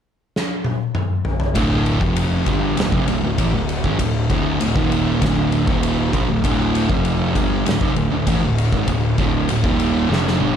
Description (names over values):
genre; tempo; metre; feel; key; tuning
stoner and doom metal; 98 BPM; 4/4; straight; unclear; A4 = 444 Hz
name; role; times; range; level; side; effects
oversized low-tuned drum kit; drums; 0.4-10.5 s; kick drum, ride cymbal, snare drum, toms; -21 LUFS; left 1 dB; none
thick fuzz guitar; riff; 1.5-10.5 s; D2 to G3; -19 LUFS; right 1 dB; distortion
fuzz picked electric bass; bass; 1.6-10.5 s; D1 to Bb1; -24 LUFS; equal; overdrive
room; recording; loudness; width
light reverb; dark, warm production; -16 LUFS; side -8 dB against mid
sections
0.0-1.6 A section; 1.6-10.6 B section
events
drum fill 0.3-1.6, 10.1-10.6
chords
0.0 N.C.; 1.6 Dm